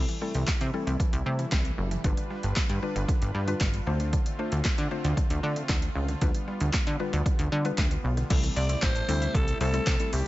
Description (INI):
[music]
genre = dance-pop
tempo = 115 BPM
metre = 4/4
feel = straight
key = C major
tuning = A4 = 443 Hz
[part]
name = mallet-like synth pluck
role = accompaniment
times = 0.0-10.3 s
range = G3 to C5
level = -35 LUFS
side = left 4 dB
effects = chorus, sidechain pumping
[part]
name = soft supersaw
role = sustained chords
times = 0.0-10.3 s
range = C3 to B4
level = -38 LUFS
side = equal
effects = sidechain pumping
[part]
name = mallet-like synth pluck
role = arpeggios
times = 0.0-10.2 s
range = D3 to A5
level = -39 LUFS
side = right 2 dB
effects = none
[part]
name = plucky analog bass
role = bass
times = 0.0-10.2 s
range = F#1 to D3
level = -28 LUFS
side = equal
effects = sidechain pumping
[part]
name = punchy analog drum machine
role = drums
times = 0.1-10.2 s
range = crash cymbal, handclaps, hi-hat, kick drum, shaker, snare drum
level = -27 LUFS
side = equal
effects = overdrive
[part]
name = breathy alto saxophone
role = melody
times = 8.6-10.3 s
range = G4 to D5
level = -31 LUFS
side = equal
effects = none
[sound]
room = digital ambience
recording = nothing above 7.9 kHz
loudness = -25 LUFS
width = side -17 dB against mid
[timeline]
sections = 0.0-8.3 A section; 8.3-10.3 B section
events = none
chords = 0.0 C6; 2.0 G7; 3.9 Dm7; 6.2 G7/D; 8.3 C6